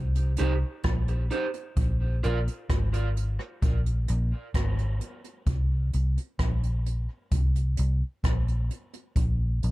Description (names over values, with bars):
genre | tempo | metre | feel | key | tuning
dub reggae | 65 BPM | 4/4 | straight | unclear | A4 = 440 Hz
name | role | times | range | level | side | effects
vintage muted fingered electric bass | bass | 0.0-9.7 s | Ab1 to C2 | -25 LUFS | equal | none
jazz brush drum kit | drums | 0.2-9.7 s | hi-hat, kick drum, rim click | -29 LUFS | equal | none
electric guitar at the edge of break-up | accompaniment | 0.4-2.4 s | Eb4 to D5 | -34 LUFS | right 4 dB | tape echo
room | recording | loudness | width
studio ambience | dark, warm production | -25 LUFS | side -18 dB against mid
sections
0.0-9.7 A section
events
none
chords
0.0 Cm; 1.8 N.C.; 5.5 Bbsus2; 9.2 N.C.